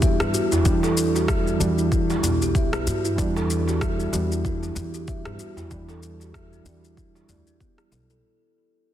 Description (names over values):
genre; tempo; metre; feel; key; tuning
organic downtempo; 95 BPM; 4/4; swing 57% on 16ths; E minor; A4 = 442 Hz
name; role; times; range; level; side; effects
muted felt-like synth keys; accompaniment; 0.0-8.3 s; E3 to D4; -28 LUFS; right 2 dB; chorus, sidechain pumping, low-pass filter, ping-pong delay
kalimba; arpeggios; 0.0-8.2 s; B3 to E5; -26 LUFS; equal; low-pass filter, ping-pong delay
upright bass; bass; 0.0-8.2 s; B1 to G2; -28 LUFS; equal; sidechain pumping
electronic kick drum; drums; 0.0-7.7 s; none; -24 LUFS; equal; overdrive
electronic shaker and rim click; drums; 0.0-8.2 s; none; -30 LUFS; left 2 dB; overdrive
darbuka; percussion; 0.0-7.4 s; none; -29 LUFS; equal; none
room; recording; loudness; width
light reverb, studio reverb; dense, heavily limited modern master; -20 LUFS; side -11 dB against mid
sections
0.0-8.2 A section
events
fade-out 0.0-8.2; filter sweep on upright bass 0.0-8.2; filter sweep on synth keys 0.0-8.2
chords
0.0 Em7